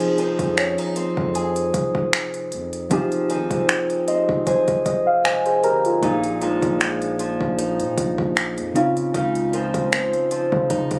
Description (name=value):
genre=contemporary R&B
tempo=77 BPM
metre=4/4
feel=swing 54% on 16ths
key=F minor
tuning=A4 = 440 Hz
part: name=muted felt-like synth keys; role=accompaniment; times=0.0-11.0 s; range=Bb2 to Bb5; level=-24 LUFS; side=equal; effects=chorus
part: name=fingerpicked old ladder-braced acoustic guitar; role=arpeggios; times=0.0-11.0 s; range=Bb2 to Ab4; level=-26 LUFS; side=equal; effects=tape echo
part: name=long sustained 808-style bass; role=bass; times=0.0-11.0 s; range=F1 to Db3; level=-34 LUFS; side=equal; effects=none
part: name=smooth R&B drum kit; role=drums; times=0.0-11.0 s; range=finger snaps, hi-hat, kick drum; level=-27 LUFS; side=equal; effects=overdrive
room=light reverb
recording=recorded on a phone in the room, studio reverb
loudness=-21 LUFS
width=mono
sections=0.0-11.0 A section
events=synth keys fill 3.7-6.0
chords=0.0 Fm7; 6.0 Bb7sus4; 8.8 Dbmaj9